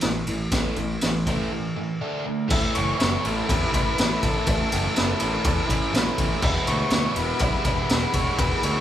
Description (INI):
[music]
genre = garage rock duo or trio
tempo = 122 BPM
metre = 4/4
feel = straight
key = unclear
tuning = A4 = 440 Hz
[part]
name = biting overdriven guitar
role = riff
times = 0.0-8.8 s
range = E2 to E4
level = -26 LUFS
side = right 1 dB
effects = none
[part]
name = growling picked electric bass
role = bass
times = 0.0-8.8 s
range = E1 to E2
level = -29 LUFS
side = equal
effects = overdrive
[part]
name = raw garage drum kit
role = drums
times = 0.0-8.7 s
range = crash cymbal, kick drum, ride cymbal, snare drum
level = -24 LUFS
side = equal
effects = none
[part]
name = combo organ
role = melody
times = 2.5-8.8 s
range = A4 to E5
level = -29 LUFS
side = left 3 dB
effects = none
[sound]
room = light reverb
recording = band playing live in one room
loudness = -21 LUFS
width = side -11 dB against mid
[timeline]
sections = 0.0-2.5 A section; 2.5-8.8 B section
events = break 1.5-2.5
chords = 0.0 A5; 2.0 D5; 2.5 A; 6.4 E